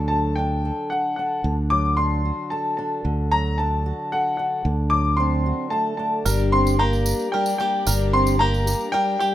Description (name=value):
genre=indie folk with a building arrangement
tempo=112 BPM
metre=3/4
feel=straight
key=unclear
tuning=A4 = 440 Hz
part: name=fingerpicked steel-string acoustic guitar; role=accompaniment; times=0.0-6.2 s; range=D3 to A4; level=-28 LUFS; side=left 1 dB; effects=none
part: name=fingered electric bass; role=bass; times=0.0-8.7 s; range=G1 to D2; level=-22 LUFS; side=right 1 dB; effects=none
part: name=clear upright piano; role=melody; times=0.1-9.3 s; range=F#5 to D6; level=-23 LUFS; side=left 2 dB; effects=none
part: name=mellow French horn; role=second line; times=5.2-9.3 s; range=G3 to C4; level=-27 LUFS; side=right 3 dB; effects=none
part: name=picked plugged-in twelve-string acoustic guitar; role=accompaniment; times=6.3-9.3 s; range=G2 to G4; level=-26 LUFS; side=left 6 dB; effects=none
part: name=warm chamber string section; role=sustained chords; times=6.3-9.3 s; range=G4 to Bb5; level=-40 LUFS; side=left 2 dB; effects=none
part: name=bluegrass banjo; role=arpeggios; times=6.3-9.3 s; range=G4 to Bb4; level=-31 LUFS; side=right 5 dB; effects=none
part: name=tambourine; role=percussion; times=6.3-9.3 s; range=none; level=-30 LUFS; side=right 4 dB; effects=none
room=light reverb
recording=rough home demo mix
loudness=-19 LUFS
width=side -12 dB against mid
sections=0.0-9.3 A section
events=build-up 0.0-9.3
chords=0.0 D; 6.3 Gm